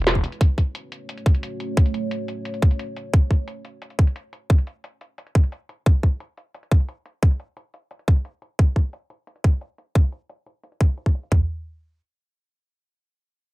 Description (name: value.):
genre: dark technical drum and bass.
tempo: 176 BPM.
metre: 4/4.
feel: straight.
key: F# minor.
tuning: A4 = 440 Hz.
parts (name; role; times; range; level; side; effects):
dark analog pad; sustained chords; 0.3-5.8 s; G#3 to C#5; -32 LUFS; right 2 dB; chorus, phaser, sidechain pumping.
drum and bass drum kit; drums; 0.1-11.3 s; hi-hat, snare drum; -26 LUFS; equal; low-pass filter on hats, low-pass filter on snare, low-pass filter on room.
drum and bass drum kit; drums; 0.2-11.4 s; kick drum, toms; -17 LUFS; equal; none.
room: little or no reverb.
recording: none.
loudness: -20 LUFS.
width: side -20 dB against mid.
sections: 0.0-11.3 A section; 11.3-13.5 B section.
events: filter sweep on drum 0.0-11.3.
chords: 0.4 F#m; 5.9 N.C..